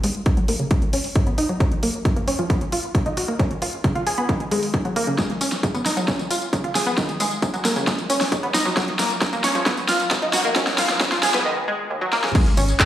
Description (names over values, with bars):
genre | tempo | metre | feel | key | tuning
uplifting trance | 134 BPM | 4/4 | straight | unclear | A4 = 440 Hz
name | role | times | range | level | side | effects
analog pluck | arpeggios | 0.0-12.9 s | D#2 to G#4 | -23 LUFS | equal | analog chorus, sidechain pumping, dub echo
tight sequencer bass | bass | 0.0-12.7 s | F#1 to D#2 | -30 LUFS | equal | none
big-room dance drum kit | drums | 0.0-12.9 s | crash cymbal, handclaps, hi-hat, snare drum, tambourine | -23 LUFS | equal | overdrive
electronic kick drum | drums | 0.3-12.9 s | none | -22 LUFS | equal | overdrive
room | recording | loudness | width
wet digital room reverb, RT60 1.1 s | played on a big sound system in a bare room, stone room reverb, high-pass filter | -19 LUFS | side -12 dB against mid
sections
0.0-12.3 A section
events
build-up 0.0-12.3; filter sweep on synth pluck 0.0-12.3; filter sweep 0.0-12.3; drum fill 5.2-11.5, 12.1; break 11.5-12.3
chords
0.0 N.C.; 1.6 F#; 2.5 N.C.; 3.4 C#; 4.3 N.C.; 6.1 C#; 7.0 N.C.; 8.8 F#; 9.7 N.C.; 10.6 C#; 11.5 N.C.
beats
0.26 0.71 1.16 | 1.60 2.05 2.50 2.95 | 3.40 3.84 4.29 4.74 | 5.19 5.63 6.08 6.53 | 6.98 7.42 7.87 8.32 | 8.77 9.22 9.66 10.11 | 10.56 11.01 11.46 11.90 | 12.35 12.80